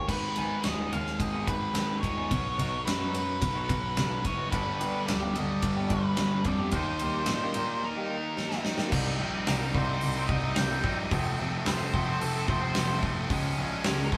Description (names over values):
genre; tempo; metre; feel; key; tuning
quiet-loud alternative rock; 109 BPM; 4/4; straight; C dorian from 8.9 s; A4 = 440 Hz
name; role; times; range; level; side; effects
octave-fuzz lead guitar; melody; 0.0-14.2 s; A4 to G5; -36 LUFS; equal; distortion, digital delay
electric guitar through a small old amp; arpeggios; 0.0-8.9 s; F#3 to Ab4; -40 LUFS; equal; phaser
high-gain distorted guitar; riff; 0.1-14.2 s; F2 to Eb4; -37 LUFS; equal; distortion
warm concert grand piano; bass; 0.1-14.2 s; D1 to Bb2; -35 LUFS; equal; none
big rock drum kit; drums; 0.1-14.2 s; crash cymbal, hi-hat, kick drum, ride cymbal, snare drum; -35 LUFS; equal; none
distorted electric guitar; riff; 4.5-14.2 s; F2 to Eb4; -36 LUFS; equal; overdrive
room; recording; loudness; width
moderate stone room reverb, RT60 1.2 s; band playing live in one room; -29 LUFS; mono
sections
0.1-8.9 A section; 8.9-14.2 B section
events
drum fill 8.4-8.9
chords
0.1 Abm; 2.3 B; 4.5 G; 6.7 Eb; 8.9 Cm; 11.1 F; 13.3 Db